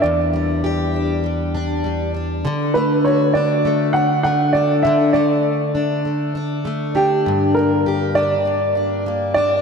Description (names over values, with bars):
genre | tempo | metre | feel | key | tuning
pop | 100 BPM | 4/4 | straight | D major | A4 = 440 Hz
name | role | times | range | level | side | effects
warm upright piano | melody | 0.0-9.6 s | G4 to F#5 | -18 LUFS | right 2 dB | ping-pong delay
picked plugged-in steel-string acoustic guitar | accompaniment | 0.0-9.6 s | E2 to G4 | -18 LUFS | left 1 dB | double-tracked left and right
room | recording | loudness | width
wet lush hall reverb, RT60 2.8 s | dreamy mix soaked in reverb | -16 LUFS | side -5 dB against mid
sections
0.0-9.6 A section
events
none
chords
0.0 Em7; 2.4 D; 7.3 Gm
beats
| 0.03 0.63 1.23 1.83 | 2.44 3.04 3.64 4.24 | 4.84 5.45 6.05 6.65 | 7.25 7.86 8.46 9.06